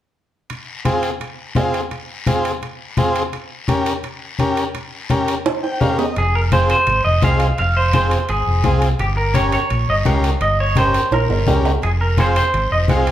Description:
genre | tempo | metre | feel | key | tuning
latin, cumbia | 170 BPM | 4/4 | straight | F minor | A4 = 439 Hz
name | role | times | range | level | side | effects
congas | percussion | 0.5-13.1 s | none | -22 LUFS | left 2 dB | none
guiro | percussion | 0.5-13.1 s | none | -33 LUFS | left 5 dB | none
timbales | percussion | 0.5-13.1 s | none | -27 LUFS | right 4 dB | none
combo organ | accompaniment | 0.8-13.1 s | C4 to G5 | -21 LUFS | left 1 dB | none
clean electric guitar | melody | 6.2-13.1 s | G4 to F5 | -18 LUFS | right 1 dB | spring reverb
fingered electric bass | bass | 6.2-13.1 s | F1 to Db2 | -18 LUFS | equal | none
room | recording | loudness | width
moderate large studio reverb, RT60 0.9 s | heard from further back in the room | -15 LUFS | side -12 dB against mid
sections
0.5-6.2 A section; 6.2-13.1 B section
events
drum fill 5.5-6.2, 11.1-11.8; transistor combo organ fill 5.5-6.2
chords
0.5 Fm; 3.3 Gdim; 6.2 Fm; 9.0 Gdim; 11.8 Fm

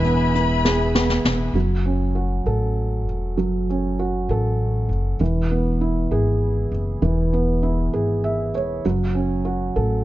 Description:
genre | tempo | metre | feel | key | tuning
six-eight pop ballad | 66 BPM (dotted quarters) | 6/8 | straight | F# minor | A4 = 435 Hz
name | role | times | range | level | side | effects
felt-muted upright piano | accompaniment | 0.0-10.0 s | E3 to E5 | -22 LUFS | right 2 dB | none
warm studio string section | sustained chords | 0.0-1.5 s | B4 to B5 | -25 LUFS | left 6 dB | none
upright bass | bass | 0.0-10.0 s | E1 to A1 | -22 LUFS | left 1 dB | none
jazz brush drum kit | drums | 0.0-1.4 s | hi-hat, snare drum | -24 LUFS | left 1 dB | none
room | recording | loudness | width
studio ambience | nothing above 7.5 kHz | -19 LUFS | side -15 dB against mid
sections
0.0-1.6 A section; 1.6-10.0 B section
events
drum fill 0.6-1.6; felt piano fill 7.9-8.8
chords
0.0 C#m7/E (rootless); 1.6 F#m; 5.2 E; 8.8 F#m

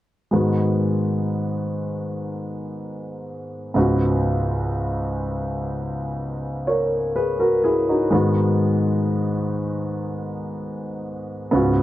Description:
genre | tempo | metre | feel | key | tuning
pop | 62 BPM | 4/4 | straight | G# minor | A4 = 437 Hz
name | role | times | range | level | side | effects
warm grand piano | accompaniment | 0.3-11.8 s | C#2 to C#5 | -20 LUFS | equal | none
room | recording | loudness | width
moderate plate reverb, RT60 2.9 s | worn, warbling old tape, cassette tape, warbly pitch drift | -20 LUFS | side -14 dB against mid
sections
0.3-11.8 A section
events
none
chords
0.3 G#m7; 3.8 C#7sus4; 8.1 G#m7

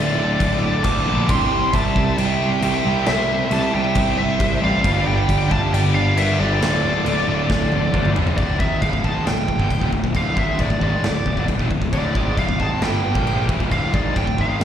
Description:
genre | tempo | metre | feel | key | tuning
heavy metal | 135 BPM | 4/4 | straight | D minor | A4 = 440 Hz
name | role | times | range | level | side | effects
high-gain lead guitar | melody | 0.0-14.6 s | D5 to D6 | -24 LUFS | right 2 dB | distortion, slapback echo, tape echo
high-gain lead guitar | second line | 0.0-8.1 s | A4 to A5 | -30 LUFS | right 4 dB | distortion, slapback echo, tape echo
distorted electric guitar | riff | 0.0-14.6 s | D2 to C4 | -28 LUFS | left 1 dB | overdrive, slapback echo
high-gain distorted guitar | riff | 0.0-14.6 s | D2 to C5 | -28 LUFS | left 12 dB | distortion, slapback echo
tight distorted guitar | riff | 0.0-14.6 s | D2 to C4 | -28 LUFS | right 11 dB | distortion, slapback echo
fuzz picked electric bass | bass | 0.0-14.6 s | D1 to G2 | -21 LUFS | equal | overdrive
big rock drum kit | drums | 0.4-14.6 s | china cymbal, crash cymbal, kick drum, snare drum, toms | -23 LUFS | equal | none
room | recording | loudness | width
little or no reverb | live gig heard through the venue's PA, recital hall reverb | -17 LUFS | side -9 dB against mid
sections
0.0-8.4 A section; 8.4-14.6 B section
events
half time 0.0-8.4; drum fill 7.5-8.4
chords
0.0 Dm; 1.3 C; 4.8 G5; 6.6 Dm

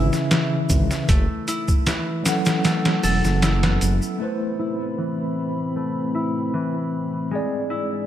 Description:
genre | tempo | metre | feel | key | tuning
trip hop | 77 BPM | 4/4 | swing 53% on 16ths | A harmonic minor | A4 = 440 Hz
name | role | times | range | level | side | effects
tine electric piano | accompaniment | 0.0-8.1 s | C#3 to F#5 | -26 LUFS | equal | medium stereo tremolo, vintage 12-bit sampler grit, tape echo
concert harp | arpeggios | 0.0-8.1 s | E3 to A4 | -26 LUFS | left 1 dB | low-pass filter, tape echo
dark detuned saw bass | bass | 0.0-4.0 s | E1 to G#1 | -21 LUFS | equal | none
trip hop sampler-style drum kit | drums | 0.1-4.0 s | hi-hat, kick drum, snare drum | -21 LUFS | equal | studio ambience
tube shaker | percussion | 0.1-4.2 s | none | -34 LUFS | equal | none
dark analog pad | sustained chords | 4.2-8.1 s | G#3 to B5 | -27 LUFS | left 2 dB | chorus, vintage 12-bit sampler grit
room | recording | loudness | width
light reverb, digital ambience | none | -20 LUFS | side -11 dB against mid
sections
0.0-4.2 A section; 4.2-8.1 B section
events
filter sweep on harp 4.2-8.1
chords
0.0 C#m7; 1.1 F#m7; 4.2 Amadd9; 7.3 Eaug7

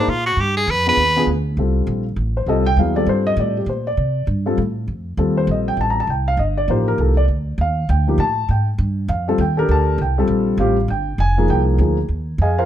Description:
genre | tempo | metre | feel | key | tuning
modal jazz | 200 BPM | 4/4 | swing 61% on 8ths | C dorian | A4 = 441 Hz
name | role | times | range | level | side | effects
edgy tenor saxophone | melody | 0.0-1.3 s | D4 to B4 | -17 LUFS | equal | none
dark concert grand piano | accompaniment | 0.0-12.7 s | F3 to Bb5 | -19 LUFS | left 1 dB | none
upright bass | bass | 0.0-12.7 s | F1 to C3 | -19 LUFS | right 1 dB | none
room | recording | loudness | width
light reverb | none | -16 LUFS | side -11 dB against mid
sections
0.0-1.6 A section; 1.6-11.2 A section; 11.2-12.7 A section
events
tenor saxophone solo 0.0-1.6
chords
0.4 G7b9; 1.6 Cm69; 11.2 Fm11

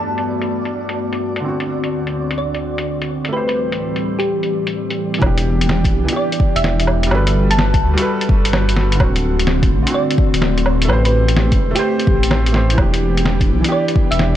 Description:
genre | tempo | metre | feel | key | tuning
future garage | 127 BPM | 4/4 | swing 66% on 16ths | E minor | A4 = 441 Hz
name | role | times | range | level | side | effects
thumb-piano-like synth pluck | melody | 0.0-14.4 s | G4 to A5 | -23 LUFS | right 1 dB | ensemble chorus, analog delay
felt-muted upright piano | accompaniment | 0.0-14.4 s | D3 to C5 | -23 LUFS | right 2 dB | sidechain pumping, low-pass filter, tape echo
airy breathy pad | sustained chords | 0.0-14.4 s | D2 to B4 | -22 LUFS | left 2 dB | chorus, vintage 12-bit sampler grit, sidechain pumping
flickering grainy texture | texture | 0.0-5.2, 13.1-14.4 s | B4 to D5 | -33 LUFS | right 2 dB | built-in reverb
lo-fi sampler-style drum kit | drums | 0.2-14.3 s | hi-hat, snare drum, woodblock | -21 LUFS | equal | low-pass filter on hats, studio reverb, low-pass filter on snare, low-pass filter on perc
dark detuned saw bass | bass | 5.2-14.4 s | D1 to D2 | -17 LUFS | equal | sidechain pumping
electronic kick drum | drums | 5.2-14.1 s | none | -16 LUFS | equal | studio reverb
room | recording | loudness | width
light reverb, digital ambience | none | -14 LUFS | side -12 dB against mid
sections
0.0-5.2 A section; 5.2-14.4 B section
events
none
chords
0.0 Gmaj9; 1.4 D7; 3.3 Am7; 5.2 Em7; 7.1 Gmaj9; 9.0 D7; 10.9 Am7; 12.8 Em7

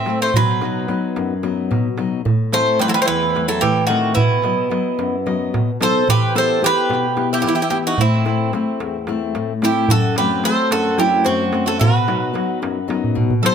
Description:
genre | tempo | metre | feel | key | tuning
greek folk, Greek bouzouki band | 220 BPM (eighths) | 7/8 | straight | E harmonic minor | A4 = 441 Hz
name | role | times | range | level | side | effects
Greek bouzouki | melody | 0.0-13.5 s | E4 to E5 | -20 LUFS | right 2 dB | tape echo
Greek bouzouki | second line | 0.0-13.5 s | D#3 to A4 | -22 LUFS | right 5 dB | tape echo
fingerpicked steel-string acoustic guitar | accompaniment | 0.0-13.5 s | E2 to D#5 | -21 LUFS | left 6 dB | none
darbuka | percussion | 0.1-13.5 s | none | -21 LUFS | right 2 dB | none
room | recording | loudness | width
moderate small room reverb, RT60 0.5 s | close, detailed microphones | -16 LUFS | side -7 dB against mid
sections
0.0-6.1 A section; 6.1-13.5 B section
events
drum fill 13.0-13.5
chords
0.3 B; 2.3 Am; 4.2 B; 6.1 Em; 8.0 Am; 9.9 F#dim; 11.8 B

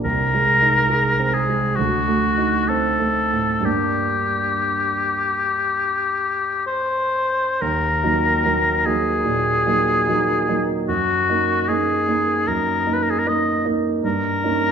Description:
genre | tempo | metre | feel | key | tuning
classical, romantic duo for oboe and grand piano | 57-78 BPM | 4/4 | rubato | G minor, Eb minor from 7.6 s | A4 = 440 Hz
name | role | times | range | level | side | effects
warm oboe | melody | 0.0-14.7 s | F#4 to Eb5 | -19 LUFS | left 2 dB | none
warm concert grand piano | accompaniment | 0.0-14.7 s | C2 to Ab4 | -22 LUFS | right 3 dB | none
room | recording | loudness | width
wet recital hall reverb, RT60 1.5 s | minimal, uncompressed stereo recording, lossy compression artefacts | -17 LUFS | side -7 dB against mid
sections
0.0-7.6 A section; 7.6-14.7 B section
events
none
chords
0.0 Ab/C; 1.8 D7b9; 3.7 Gm; 7.6 Ebm; 10.9 Ebm/Gb; 14.0 Eb7/G

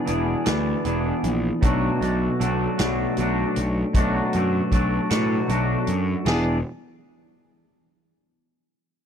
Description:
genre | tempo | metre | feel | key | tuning
indie rock | 52 BPM (dotted quarters) | 6/8 | straight | E mixolydian | A4 = 440 Hz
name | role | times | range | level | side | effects
twangy electric guitar | riff | 0.0-6.6 s | B2 to G#4 | -23 LUFS | equal | double-tracked left and right
fuzz picked electric bass | bass | 0.1-6.6 s | E1 to A2 | -25 LUFS | equal | overdrive
vintage drum kit | drums | 0.1-6.4 s | crash cymbal, hi-hat, kick drum, snare drum | -25 LUFS | equal | none
room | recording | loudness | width
small room ambience | dry, close 1970s-style studio recording | -20 LUFS | side -8 dB against mid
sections
0.0-6.3 A section; 6.3-8.6 B section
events
none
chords
0.0 E7; 1.6 Bm7; 6.3 E7

